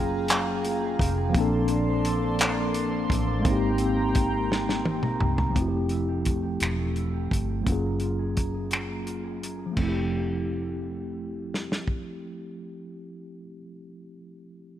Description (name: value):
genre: slow six-eight R&B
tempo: 57 BPM (dotted quarters)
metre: 6/8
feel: straight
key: F major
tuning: A4 = 440 Hz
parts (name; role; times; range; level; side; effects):
- mellow electric guitar; second line; 0.0-13.6 s; F3 to C5; -34 LUFS; right 4 dB; none
- mellow tine electric piano; accompaniment; 0.0-14.8 s; F3 to A4; -29 LUFS; left 1 dB; medium stereo tremolo, low-pass filter
- chorused pulse-width pad; sustained chords; 0.0-5.5 s; Bb3 to C6; -32 LUFS; equal; none
- vintage muted fingered electric bass; bass; 0.0-13.5 s; E1 to C2; -30 LUFS; equal; none
- warm soul drum kit; drums; 0.3-12.0 s; crash cymbal, finger snaps, handclaps, hi-hat, kick drum, snare drum, toms; -27 LUFS; equal; none
room: light reverb, small room ambience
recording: none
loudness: -24 LUFS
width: side -11 dB against mid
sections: 0.0-5.6 A section; 5.6-9.8 B section; 9.8-14.0 C section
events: drum fill 4.5-5.6; filter sweep on tine electric piano 5.6-9.8; break 8.7-9.8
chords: 0.0 Gbmaj9; 1.3 Bbmaj9; 3.4 Abmaj9; 5.6 Fmaj9; 7.7 Gbmaj9; 9.8 Fmaj9